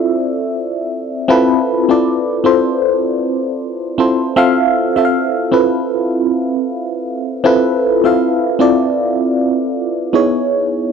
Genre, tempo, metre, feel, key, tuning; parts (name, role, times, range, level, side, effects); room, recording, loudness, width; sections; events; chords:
R&B; 78 BPM; 4/4; swing 56% on 16ths; A4 = 441 Hz
FM electric piano with auto-pan; solo; 0.0-10.9 s; B3 to F5; -13 LUFS; equal; phaser
little or no reverb; dry, close 1970s-style studio recording; -13 LUFS; side -6 dB against mid
0.0-10.9 A section
0.0 Dm9; 10.1 C#m9